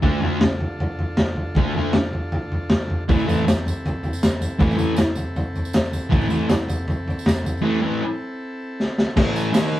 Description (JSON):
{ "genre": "garage rock duo or trio", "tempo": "158 BPM", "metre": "4/4", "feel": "straight", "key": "A minor", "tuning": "A4 = 440 Hz", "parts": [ { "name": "combo organ", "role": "sustained chords", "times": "0.0-9.1 s", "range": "C4 to A4", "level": "-32 LUFS", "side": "equal", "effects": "spring reverb" }, { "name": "thick fuzz guitar", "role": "riff", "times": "0.0-9.8 s", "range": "A2 to D#4", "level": "-21 LUFS", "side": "equal", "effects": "distortion" }, { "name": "crunchy breakbeat drum kit", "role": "drums", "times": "0.0-9.6 s", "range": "crash cymbal, hi-hat, kick drum, snare drum, toms", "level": "-20 LUFS", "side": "equal", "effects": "none" }, { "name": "tambourine", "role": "percussion", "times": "3.1-9.6 s", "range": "none", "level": "-40 LUFS", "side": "right 4 dB", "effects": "none" } ], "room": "moderate studio reverb, RT60 0.6 s", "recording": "band playing live in one room, cassette tape", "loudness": "-19 LUFS", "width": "side -14 dB against mid", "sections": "0.0-9.2 A section", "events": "break 7.6-9.2; drum fill 8.8-9.2", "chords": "0.0 Dm; 3.1 Am; 9.2 A5" }